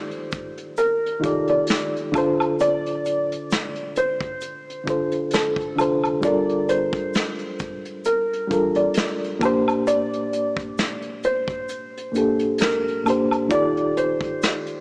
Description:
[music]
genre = lo-fi hip hop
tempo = 66 BPM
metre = 4/4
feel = swing 56% on 16ths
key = Bb major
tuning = A4 = 435 Hz
[part]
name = felt-muted upright piano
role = melody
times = 0.0-14.8 s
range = A4 to D5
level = -24 LUFS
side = equal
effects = low-pass filter
[part]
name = reed electric piano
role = accompaniment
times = 0.0-14.8 s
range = Bb2 to D5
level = -23 LUFS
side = equal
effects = medium tremolo, low-pass filter
[part]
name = vintage brush drum kit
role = drums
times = 0.1-14.8 s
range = hi-hat, kick drum, snare drum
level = -26 LUFS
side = equal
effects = none
[part]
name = egg shaker and woodblock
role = percussion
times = 0.3-14.7 s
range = none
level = -28 LUFS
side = equal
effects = none
[part]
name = warm sub bass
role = bass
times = 1.2-14.3 s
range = D1 to Bb1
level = -41 LUFS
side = equal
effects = none
[sound]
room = light reverb, studio ambience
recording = small speaker sound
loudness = -20 LUFS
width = side -33 dB against mid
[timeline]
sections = 0.0-13.5 A section; 13.5-14.8 A section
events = kick muted 11.7-13.5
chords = 0.0 Ebmaj9#11; 2.1 Dm7; 6.2 Gm9; 9.4 Bb69; 13.5 Ebmaj9#11

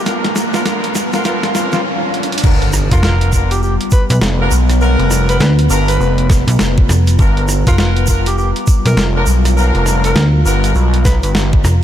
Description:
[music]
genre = glitch hop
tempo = 101 BPM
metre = 4/4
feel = swing 62% on 16ths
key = unclear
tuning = A4 = 439 Hz
[part]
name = warbly tape-like pad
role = sustained chords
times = 0.0-11.8 s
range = G3 to A#5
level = -22 LUFS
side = left 2 dB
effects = chorus, built-in reverb, sidechain pumping
[part]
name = gritty driven synth bass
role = bass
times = 0.0-11.6 s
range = F1 to G2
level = -15 LUFS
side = equal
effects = high-pass filter
[part]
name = riser and impact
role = sound effects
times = 0.0-4.8 s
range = none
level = -23 LUFS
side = right 1 dB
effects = none
[part]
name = clear horn section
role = stabs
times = 0.1-10.7 s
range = B3 to A#4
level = -21 LUFS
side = left 1 dB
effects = sidechain pumping, ping-pong delay
[part]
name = boom bap sampler-style drum kit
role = drums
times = 0.1-11.8 s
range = crash cymbal, hi-hat, rim click, snare drum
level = -20 LUFS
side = equal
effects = overdrive
[part]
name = tube shaker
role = percussion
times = 0.1-11.8 s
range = none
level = -27 LUFS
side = right 4 dB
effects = none
[part]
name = breathy tenor saxophone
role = melody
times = 0.5-11.3 s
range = F4 to B4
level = -24 LUFS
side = equal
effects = vintage 12-bit sampler grit, ping-pong delay
[part]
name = electronic kick drum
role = drums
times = 2.4-11.6 s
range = none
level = -12 LUFS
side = equal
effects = none
[part]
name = slap-like FM bass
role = bass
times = 2.9-11.8 s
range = F1 to D2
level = -12 LUFS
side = equal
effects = tube saturation
[sound]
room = light reverb, digital ambience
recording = none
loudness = -11 LUFS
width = side -11 dB against mid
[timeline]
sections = 0.0-2.4 A section; 2.4-11.8 B section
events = build-up 0.0-2.4; drum fill 0.0-1.8, 2.1; riser 0.0-2.4; stop 1.8-2.4; drop 2.4-11.8; impact 2.4-4.8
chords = 0.0 G7#9

